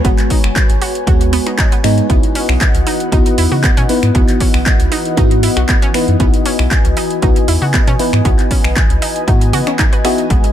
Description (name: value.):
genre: deep house.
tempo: 117 BPM.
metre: 4/4.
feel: swing 53% on 16ths.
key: C# minor.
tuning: A4 = 441 Hz.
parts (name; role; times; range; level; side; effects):
airy breathy pad; sustained chords; 0.0-10.5 s; E3 to G#5; -23 LUFS; left 1 dB; chorus, sidechain pumping.
analog pluck; arpeggios; 0.0-10.4 s; B3 to B4; -23 LUFS; right 3 dB; chorus, sidechain pumping, digital delay.
mellow FM electric piano; stabs; 0.0-10.5 s; G#3 to B4; -18 LUFS; left 1 dB; chorus, phaser, sidechain pumping, digital delay.
round analog bass; bass; 0.0-10.4 s; F#1 to C#3; -16 LUFS; equal; sidechain pumping.
deep house drum kit; drums; 0.0-10.5 s; finger snaps, handclaps, hi-hat; -20 LUFS; equal; overdrive.
electronic kick drum; drums; 0.0-10.4 s; none; -13 LUFS; equal; none.
room: little or no reverb.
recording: none.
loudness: -10 LUFS.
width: side -11 dB against mid.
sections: 0.0-10.5 A section.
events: none.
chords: 0.0 G#m7; 2.1 C#m11.